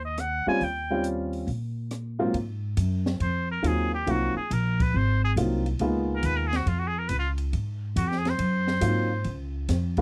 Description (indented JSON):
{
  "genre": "jazz, small-group swing and bop",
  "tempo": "139 BPM",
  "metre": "4/4",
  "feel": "swing 67% on 8ths",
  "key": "Ab mixolydian",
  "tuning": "A4 = 440 Hz",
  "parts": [
    { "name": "trumpet with straight mute", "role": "melody", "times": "0.0-9.4 s", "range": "F4 to Ab5", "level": "-32 LUFS", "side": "equal", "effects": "none" },
    { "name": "upright bass", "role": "bass", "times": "0.0-10.0 s", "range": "Ab1 to Bb2", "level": "-30 LUFS", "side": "equal", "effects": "none" },
    { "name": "open jazz drum kit", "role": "drums", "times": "0.2-10.0 s", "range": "hi-hat, kick drum, ride cymbal, rim click, snare drum", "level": "-34 LUFS", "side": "equal", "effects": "none" },
    { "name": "warm concert grand piano", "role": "accompaniment", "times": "0.5-10.0 s", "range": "Ab2 to F4", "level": "-29 LUFS", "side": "equal", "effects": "none" }
  ],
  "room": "little or no reverb",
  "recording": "dry, close 1970s-style studio recording",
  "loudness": "-27 LUFS",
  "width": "mono",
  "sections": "0.0-2.3 A section; 2.3-10.0 B section",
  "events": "muted trumpet solo 2.3-10.0",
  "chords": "0.0 Ab6; 0.6 Eb13; 2.3 Ab13; 5.8 Db13; 7.5 Ab13; 9.3 Db"
}